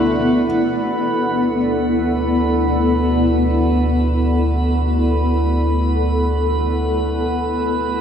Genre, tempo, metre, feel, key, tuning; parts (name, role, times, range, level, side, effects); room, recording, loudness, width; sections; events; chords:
ambient; free time; A4 = 440 Hz
granular cloud pad; sustained chords; 0.0-8.0 s; B3 to F#5; -17 LUFS; left 1 dB; built-in reverb, shimmer reverb
deep rumbling drone; bass; 0.0-8.0 s; D2; -20 LUFS; right 1 dB; built-in reverb
hand-pumped harmonium; drone; 0.0-8.0 s; D3 to A3; -35 LUFS; left 1 dB
drifting glass-harmonics texture; texture; 0.0-8.0 s; B4 to B5; -25 LUFS; right 3 dB; chorus, built-in reverb, shimmer reverb
wet lush hall reverb, RT60 2.8 s; dreamy mix soaked in reverb; -15 LUFS; side -8 dB against mid
0.4-8.0 A section
0.0 Bm/D